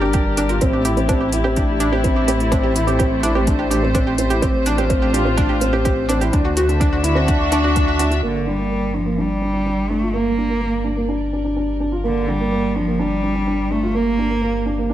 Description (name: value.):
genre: piano and strings electronica.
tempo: 126 BPM.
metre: 4/4.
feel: straight.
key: G dorian.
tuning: A4 = 440 Hz.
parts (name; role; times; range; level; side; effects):
dark studio string section; sustained chords; 0.0-14.9 s; D3 to E5; -25 LUFS; left 2 dB; none.
analog pluck; arpeggios; 0.0-8.1 s; D4 to Bb4; -25 LUFS; right 2 dB; chorus, sidechain pumping, digital delay.
felt-muted upright piano; riff; 0.0-14.9 s; Bb3 to F#4; -21 LUFS; right 1 dB; low-pass filter, digital delay.
dark detuned saw bass; bass; 0.0-14.9 s; G1 to D2; -23 LUFS; equal; sidechain pumping.
electronic hi-hat; drums; 0.1-8.2 s; none; -28 LUFS; left 2 dB; none.
electronic kick drum; drums; 0.1-7.9 s; none; -20 LUFS; equal; none.
warm cello; melody; 8.3-14.9 s; D3 to Bb3; -22 LUFS; right 1 dB; none.
room: light reverb, small room ambience.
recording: none.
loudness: -16 LUFS.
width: side -12 dB against mid.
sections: 0.0-8.2 A section; 8.2-14.9 B section.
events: fade-in on string section 8.2-14.9.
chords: 0.0 Gm; 0.6 Am7; 4.4 Fadd9/A; 6.3 Dadd9; 8.2 Gm.